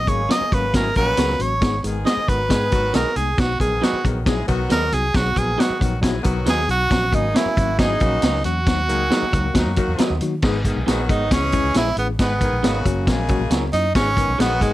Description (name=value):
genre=uptempo 1960s-style soul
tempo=136 BPM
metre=4/4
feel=straight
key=G# minor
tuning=A4 = 440 Hz
part: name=edgy tenor saxophone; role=melody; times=0.0-14.7 s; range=G#3 to D#5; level=-21 LUFS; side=right 2 dB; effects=none
part: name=vintage muted fingered electric bass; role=bass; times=0.0-14.7 s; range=F#1 to D#3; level=-24 LUFS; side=equal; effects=none
part: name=warm horn section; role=second line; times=0.1-14.7 s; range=A#2 to B4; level=-28 LUFS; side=left 3 dB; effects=none
part: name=tine electric piano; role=accompaniment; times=0.1-14.7 s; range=F#3 to A#4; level=-26 LUFS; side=left 3 dB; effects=medium stereo tremolo
part: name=vintage drum kit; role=drums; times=0.1-14.7 s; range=crash cymbal, hi-hat, kick drum, snare drum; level=-21 LUFS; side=equal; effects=none
part: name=electric guitar through a small old amp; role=stabs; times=0.3-14.5 s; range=C#4 to E5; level=-28 LUFS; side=right 6 dB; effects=none
room=light reverb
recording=dark, warm production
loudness=-17 LUFS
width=side -15 dB against mid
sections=0.0-10.4 A section; 10.4-14.7 B section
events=tenor saxophone solo 10.4-14.7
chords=0.0 F#; 1.6 G#m; 3.4 B; 6.9 F#; 8.7 D#m; 10.4 G#m; 11.3 C#m; 12.2 G#m; 12.9 F#; 13.9 G#m